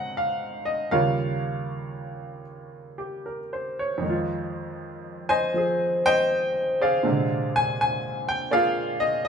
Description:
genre	solo jazz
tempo	80 BPM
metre	4/4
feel	swing 66% on 8ths, rubato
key	Eb mixolydian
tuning	A4 = 440 Hz
part	clear baby grand piano	solo	0.0-9.3 s	Eb2 to Bb5	-23 LUFS	equal	none
room	wet small room reverb, RT60 0.5 s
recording	band playing live in one room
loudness	-22 LUFS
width	side -6 dB against mid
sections	0.0-9.3 A section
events	none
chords	0.0 Ab9; 0.9 Eb9; 4.0 Fm7; 7.0 Bb9

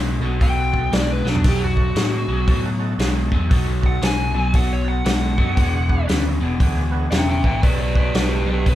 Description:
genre	blues rock power trio and southern rock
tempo	116 BPM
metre	4/4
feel	swing 63% on 8ths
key	unclear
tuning	A4 = 442 Hz
part	overdriven tonewheel organ	sustained chords	0.0-8.8 s	B3 to B4	-33 LUFS	right 3 dB	chorus vibrato, slow rotary speaker
part	crunchy overdriven guitar	riff	0.0-8.8 s	E2 to G#3	-25 LUFS	left 1 dB	none
part	overdriven picked electric bass	bass	0.0-8.8 s	E1 to A2	-22 LUFS	equal	none
part	smooth overdriven lead guitar	melody	0.4-8.8 s	D4 to G#5	-25 LUFS	equal	none
part	vintage drum kit	drums	0.4-8.8 s	hi-hat, kick drum, snare drum, splash cymbal, toms	-20 LUFS	equal	none
room	light reverb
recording	band playing live in one room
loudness	-17 LUFS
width	side -13 dB against mid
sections	0.0-8.8 A section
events	drum fill 1.2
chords	0.0 B7; 5.6 E7; 7.6 B7

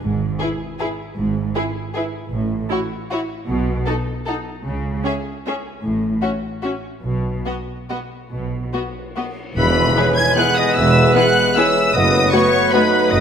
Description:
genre	classical, orchestral ballroom waltz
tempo	134-166 BPM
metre	3/4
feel	rubato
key	E major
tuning	A4 = 440 Hz
part	warm symphonic cello section	bass	0.0-13.2 s	E2 to C#3	-26 LUFS	right 1 dB	none
part	warm symphonic double bass section	bass	0.0-13.2 s	E1 to C#2	-25 LUFS	right 2 dB	none
part	rich symphonic violin section	melody	0.4-13.2 s	B4 to G#6	-22 LUFS	left 3 dB	none
part	warm symphonic violin section	second line	0.4-12.8 s	F#4 to B4	-26 LUFS	left 4 dB	none
part	rich symphonic viola section	accompaniment	0.4-12.8 s	A3 to E4	-26 LUFS	right 1 dB	none
part	cymbal swell and tam-tam	percussion	7.0-11.1 s	none	-30 LUFS	left 3 dB	none
part	silver concert flute	second line	9.6-13.2 s	B4 to G#5	-23 LUFS	left 3 dB	none
part	warm oboe	second line	9.6-13.2 s	B4 to G#5	-22 LUFS	right 2 dB	none
part	mellow bassoon	accompaniment	9.6-13.2 s	B3 to E4	-22 LUFS	right 1 dB	none
part	mellow French horn section	sustained chords	9.6-13.2 s	B3 to G#4	-24 LUFS	left 1 dB	none
part	warm trombone section	sustained chords	9.6-13.2 s	E3 to A3	-25 LUFS	right 4 dB	none
part	clear trumpet	stabs	9.6-13.2 s	B4	-22 LUFS	right 1 dB	none
part	clear tuba	bass	9.6-13.2 s	E1 to F#1	-26 LUFS	right 4 dB	none
part	timpani	percussion	9.6-10.1 s	E2	-25 LUFS	left 2 dB	none
room	moderate scoring stage reverb, RT60 1.8 s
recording	faint mains hum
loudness	-16 LUFS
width	side -8 dB against mid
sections	0.0-9.6 A section; 9.6-13.2 B section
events	band accent 9.6-10.0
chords	0.0 E/G#; 2.3 F#m7/A (rootless); 3.5 B; 4.7 N.C.; 5.8 F#m/A (rootless); 7.0 N.C.; 9.6 E; 11.9 B7/F#

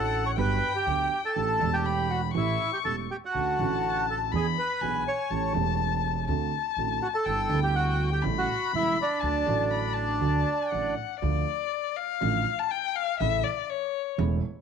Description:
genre	tango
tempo	122 BPM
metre	4/4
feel	rubato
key	D major, D harmonic minor from 11.2 s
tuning	A4 = 440 Hz
part	bandoneon	melody	0.0-11.0 s	D4 to C#6	-28 LUFS	right 2 dB	none
part	warm violin	second line	0.0-14.2 s	C#5 to C#6	-30 LUFS	left 14 dB	none
part	dark concert grand piano	accompaniment	0.0-14.4 s	E1 to G#4	-31 LUFS	right 10 dB	none
part	upright bass	bass	0.0-14.4 s	E1 to E2	-31 LUFS	equal	none
room	light reverb, studio ambience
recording	1960s-style stereo with parts hard left and right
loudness	-25 LUFS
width	side -6 dB against mid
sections	0.0-11.2 A section; 11.2-14.6 B section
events	violin solo 11.2-14.6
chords	0.4 Gmaj7; 1.4 A7sus4; 2.3 A7; 3.3 Dmaj7; 4.3 E7; 5.3 A7; 6.3 D7; 7.3 G6; 8.2 A7; 9.2 D; 11.2 Dm; 13.2 A

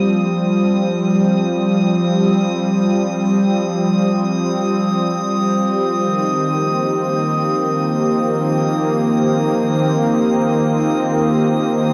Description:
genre	ambient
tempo	free time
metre	none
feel	none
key	unclear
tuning	A4 = 440 Hz
part	warm analog pad	sustained chords	0.0-11.9 s	Eb3 to C5	-18 LUFS	equal	chorus, shimmer reverb
part	hand-pumped harmonium	drone	0.0-11.9 s	F3 to C4	-29 LUFS	equal	none
part	drifting glass-harmonics texture	texture	0.0-11.9 s	Eb6	-28 LUFS	equal	chorus, built-in reverb, shimmer reverb
room	wet cathedral reverb, RT60 6.2 s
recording	dark, warm production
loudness	-17 LUFS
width	mono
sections	0.0-11.9 A section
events	none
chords	0.0 Fsus2; 6.1 Cm7

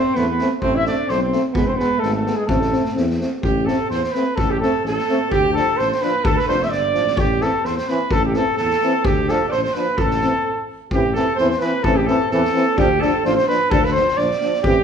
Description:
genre	balkan folk, Balkan brass band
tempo	128 BPM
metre	2/4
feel	swing 55% on 16ths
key	A harmonic minor, A minor from 3.4 s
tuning	A4 = 442 Hz
part	warm flugelhorn	melody	0.0-14.8 s	G4 to E5	-21 LUFS	left 1 dB	none
part	clear alto saxophone	second line	0.0-14.8 s	G#3 to E5	-23 LUFS	right 5 dB	none
part	clear trombone	accompaniment	0.0-14.8 s	E3 to A3	-27 LUFS	right 2 dB	none
part	mellow euphonium	accompaniment	0.0-14.7 s	B3 to D4	-24 LUFS	left 2 dB	none
part	street-band drum kit	percussion	0.1-14.8 s	kick drum, snare drum	-26 LUFS	equal	none
part	mellow tuba	bass	0.2-14.8 s	E1 to E2	-25 LUFS	left 1 dB	none
room	wet large studio reverb, RT60 1.1 s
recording	band playing live in one room, faint mains hum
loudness	-16 LUFS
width	side -7 dB against mid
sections	0.0-3.4 A section; 3.4-10.9 B section; 10.9-14.8 B section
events	stop 10.5-10.9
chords	0.0 Am; 1.6 E; 2.5 Am; 5.3 Dm; 7.2 Am; 9.1 Dm; 10.0 Am; 12.8 Dm

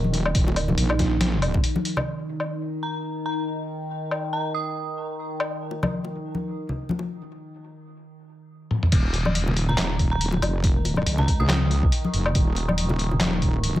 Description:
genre	deep dubstep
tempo	140 BPM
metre	4/4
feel	swing 56% on 16ths, half-time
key	unclear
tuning	A4 = 440 Hz
part	overtone-sweeping drone	sustained chords	0.0-13.8 s	Eb3	-32 LUFS	right 1 dB	chorus, built-in reverb, phaser
part	wobble bass	bass	0.0-1.6, 8.9-13.8 s	Eb1 to Db2	-23 LUFS	equal	chorus
part	congas and bongos	percussion	0.0-2.0, 5.7-13.8 s	none	-28 LUFS	left 2 dB	dub echo
part	trip hop sampler-style drum kit	drums	0.1-5.9, 8.7-13.7 s	crash cymbal, handclaps, hi-hat, snare drum, toms, woodblock	-26 LUFS	left 1 dB	none
part	electronic kick drum	drums	0.3-1.6, 8.9-13.5 s	none	-22 LUFS	equal	none
part	dark detuned synth bell	melody	2.8-5.0, 9.7-11.8 s	Bb5 to Eb6	-33 LUFS	right 2 dB	chorus, tremolo, dub echo
room	digital ambience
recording	none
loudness	-22 LUFS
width	side -14 dB against mid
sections	0.0-2.1 A section; 2.1-8.9 B section; 8.9-13.8 C section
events	drum fill 8.7; drop 8.9-13.8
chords	0.0 Eb5; 2.1 N.C.; 8.9 Ebsus2

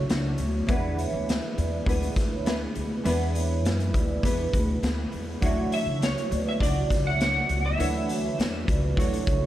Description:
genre	indie pop, bedroom pop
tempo	101 BPM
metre	4/4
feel	straight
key	D lydian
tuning	A4 = 440 Hz
part	nylon-string guitar	accompaniment	0.0-9.5 s	D3 to C#5	-33 LUFS	left 4 dB	ensemble chorus, vibrato effect
part	soft electric-piano-like synth keys	accompaniment	0.0-9.5 s	F#3 to D5	-34 LUFS	right 4 dB	chorus
part	upright bass	bass	0.0-9.5 s	C#2 to F#2	-28 LUFS	equal	none
part	raw garage drum kit	drums	0.1-9.4 s	hi-hat, kick drum, snare drum	-28 LUFS	equal	none
part	vibraphone with soft mallets	second line	0.7-9.4 s	G#4 to F#5	-35 LUFS	right 7 dB	analog chorus, slapback echo
part	electric slide guitar	melody	5.7-8.8 s	C#5 to F#5	-29 LUFS	equal	analog chorus, slapback echo
room	light reverb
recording	dark, warm production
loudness	-23 LUFS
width	side -13 dB against mid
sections	0.0-9.5 A section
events	none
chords	0.0 Dmaj9; 0.7 E7; 5.4 Dmaj9

